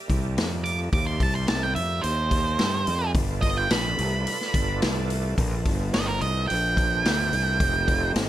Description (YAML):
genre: blues rock power trio and southern rock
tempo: 108 BPM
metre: 4/4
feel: straight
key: unclear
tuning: A4 = 439 Hz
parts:
  - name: overdriven tonewheel organ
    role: sustained chords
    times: 0.0-8.3 s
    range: D4 to E5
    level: -35 LUFS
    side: right 4 dB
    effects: chorus vibrato, slow rotary speaker
  - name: fuzz fingered electric bass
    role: bass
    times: 0.1-8.3 s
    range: F1 to G2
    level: -27 LUFS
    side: equal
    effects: overdrive
  - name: vintage drum kit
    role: drums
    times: 0.1-8.3 s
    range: hi-hat, kick drum, snare drum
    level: -26 LUFS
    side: left 1 dB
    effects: none
  - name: octave-fuzz lead guitar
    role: melody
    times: 0.6-8.1 s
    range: Bb4 to D6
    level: -26 LUFS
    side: right 3 dB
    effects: distortion
room: light reverb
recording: none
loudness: -22 LUFS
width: side -13 dB against mid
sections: 0.0-8.3 A section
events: lead electric guitar solo 0.0-8.3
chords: 0.0 C7; 3.1 G7; 7.6 F7